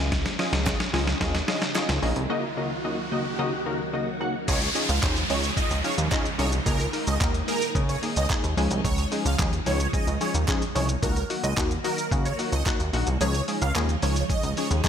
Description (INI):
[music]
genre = dance-pop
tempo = 110 BPM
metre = 4/4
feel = straight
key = Db major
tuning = A4 = 440 Hz
[part]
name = funky polysynth comp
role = accompaniment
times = 0.0-14.9 s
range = Db3 to Gb5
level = -30 LUFS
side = left 2 dB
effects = chorus, sidechain pumping
[part]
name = phased string machine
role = sustained chords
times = 0.0-14.9 s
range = Db2 to Gb4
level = -34 LUFS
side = equal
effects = ensemble chorus, phaser, sidechain pumping
[part]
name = chorused synth bass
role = bass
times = 0.0-14.8 s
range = Bb1 to Db3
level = -26 LUFS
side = equal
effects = sidechain pumping
[part]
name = riser and downlifter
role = sound effects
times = 0.1-8.8 s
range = none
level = -33 LUFS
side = equal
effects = none
[part]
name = trip hop sampler-style drum kit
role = drums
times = 0.1-14.9 s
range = crash cymbal, handclaps, hi-hat, kick drum, shaker, snare drum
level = -28 LUFS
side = equal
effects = none
[part]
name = group handclap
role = percussion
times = 0.7-14.9 s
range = none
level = -40 LUFS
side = right 6 dB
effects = none
[part]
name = supersaw chords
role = melody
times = 4.5-14.7 s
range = Bb4 to F5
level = -31 LUFS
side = right 3 dB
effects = ensemble chorus, sidechain pumping, ping-pong delay
[sound]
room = moderate lush hall reverb, RT60 1.9 s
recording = bright 1980s-style digital production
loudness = -23 LUFS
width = side -8 dB against mid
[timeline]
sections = 0.0-4.5 A section; 4.5-14.9 B section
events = build-up 0.0-4.5; drum fill 0.0-2.3; riser 0.1-4.5; break 2.3-4.5; drop 4.5-14.9; kick muted 13.2-14.3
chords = 0.0 Dbadd9; 2.3 Ebm/Db; 4.5 Dbadd9; 6.7 Absus2/Db; 8.6 Dbadd9; 11.0 Ebm/Db; 13.2 Dbadd9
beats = | 0.12 0.66 1.21 1.75 | 2.30 2.85 3.39 3.94 | 4.48 5.03 5.57 6.12 | 6.66 7.21 7.75 8.30 | 8.85 9.39 9.94 10.48 | 11.03 11.57 12.12 12.66 | 13.21 13.75 14.30 14.85